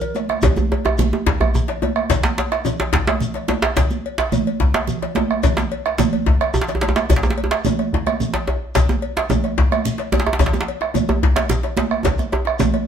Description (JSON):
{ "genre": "west african traditional, West African drum ensemble", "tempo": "145 BPM (dotted quarters)", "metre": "12/8", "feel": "straight", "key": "none", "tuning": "none", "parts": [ { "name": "congas", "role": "percussion", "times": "0.0-12.8 s", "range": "none", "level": "-23 LUFS", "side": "right 6 dB", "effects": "none" }, { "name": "cowbell", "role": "percussion", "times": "0.0-12.9 s", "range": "none", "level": "-28 LUFS", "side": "left 9 dB", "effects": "none" }, { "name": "djembe", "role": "percussion", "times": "0.0-12.7 s", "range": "none", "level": "-24 LUFS", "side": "left 4 dB", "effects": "none" }, { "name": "shekere", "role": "percussion", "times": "0.0-12.7 s", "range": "none", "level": "-27 LUFS", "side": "left 3 dB", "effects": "none" }, { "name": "bombo", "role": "percussion", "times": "0.2-12.8 s", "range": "none", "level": "-22 LUFS", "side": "right 2 dB", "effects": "none" }, { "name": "djembe", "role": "percussion", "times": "0.4-12.7 s", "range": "none", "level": "-21 LUFS", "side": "right 1 dB", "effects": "none" } ], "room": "wet studio reverb, RT60 0.8 s", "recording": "band playing live in one room", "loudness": "-17 LUFS", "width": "side -8 dB against mid", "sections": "0.4-12.9 A section", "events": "drum fill 0.0-0.4, 6.4-7.1, 12.1-12.9", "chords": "none" }